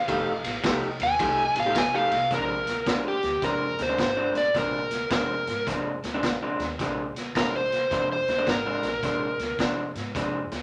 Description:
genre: electric blues shuffle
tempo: 107 BPM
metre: 4/4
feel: swing 64% on 8ths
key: Bb mixolydian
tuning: A4 = 439 Hz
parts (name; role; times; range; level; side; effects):
- overdriven slide guitar; melody; 0.0-9.6 s; G4 to Ab5; -28 LUFS; equal; none
- upright bass; bass; 0.0-10.6 s; F1 to Ab2; -43 LUFS; equal; none
- electric guitar through a small old amp; riff; 0.1-10.6 s; Bb2 to G4; -32 LUFS; equal; none
- raw garage drum kit; drums; 0.1-10.6 s; hi-hat, kick drum, ride cymbal, snare drum; -32 LUFS; equal; none
room: light reverb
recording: none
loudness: -26 LUFS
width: mono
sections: 0.0-2.3 A section; 2.3-10.6 B section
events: electric slide guitar solo 0.0-2.3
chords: 0.1 F9; 2.3 Bb9

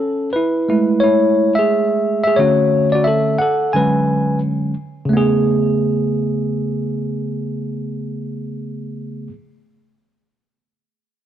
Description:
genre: hip hop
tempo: 88 BPM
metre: 4/4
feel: swing 62% on 16ths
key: A major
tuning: A4 = 439 Hz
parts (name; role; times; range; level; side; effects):
- tine electric piano; accompaniment; 0.0-9.3 s; C#3 to G#5; -15 LUFS; equal; none
room: light reverb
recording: dark, warm production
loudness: -15 LUFS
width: side -10 dB against mid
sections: 0.0-5.1 A section; 5.1-7.8 B section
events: tine electric piano solo 0.0-5.1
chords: 0.0 Amaj9/G#; 2.4 Dmaj9; 3.8 Bm69/D; 5.1 Amaj9

